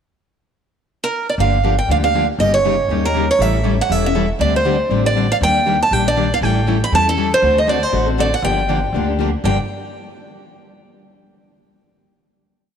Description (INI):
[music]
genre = acoustic string swing (jazz manouche)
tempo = 238 BPM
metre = 4/4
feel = swing 56% on 8ths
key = G minor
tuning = A4 = 440 Hz
[part]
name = picked steel-string acoustic guitar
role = melody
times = 1.0-9.6 s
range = A4 to B5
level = -17 LUFS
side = right 2 dB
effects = none
[part]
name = picked steel-string acoustic guitar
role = accompaniment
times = 1.4-9.6 s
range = G2 to A4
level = -22 LUFS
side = left 11 dB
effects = none
[part]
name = picked steel-string acoustic guitar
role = accompaniment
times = 1.4-9.6 s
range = G2 to A4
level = -25 LUFS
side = right 9 dB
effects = none
[part]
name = upright bass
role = bass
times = 1.4-9.6 s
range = E1 to E2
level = -20 LUFS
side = equal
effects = none
[sound]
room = moderate plate reverb, RT60 3.5 s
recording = 1960s-style stereo with parts hard left and right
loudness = -14 LUFS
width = side -8 dB against mid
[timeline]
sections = 0.4-1.4 pickup bar; 1.4-9.4 A section; 9.4-10.5 final chord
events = none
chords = 0.4 N.C.; 1.4 Gm7; 2.4 Eb7/G; 3.4 A7; 4.4 D7sus4; 5.4 Ebmaj7; 6.4 A7; 7.4 D7; 8.4 Gm7